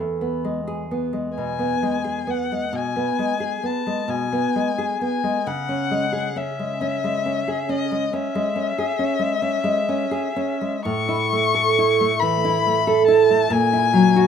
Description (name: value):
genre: romantic duo for violin and classical guitar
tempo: 40-47 BPM (dotted quarters)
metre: 12/8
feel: rubato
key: E major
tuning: A4 = 440 Hz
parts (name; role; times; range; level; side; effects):
- nylon-string guitar; accompaniment; 0.0-14.3 s; E2 to A4; -21 LUFS; right 1 dB; slapback echo
- warm violin; melody; 1.4-14.3 s; D#5 to C#6; -23 LUFS; left 8 dB; none
room: little or no reverb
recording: recorded outdoors, with no room sound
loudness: -19 LUFS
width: side -7 dB against mid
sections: 0.0-14.3 A section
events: none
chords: 0.0 E; 5.5 C#m; 10.9 A; 13.5 F#7/A#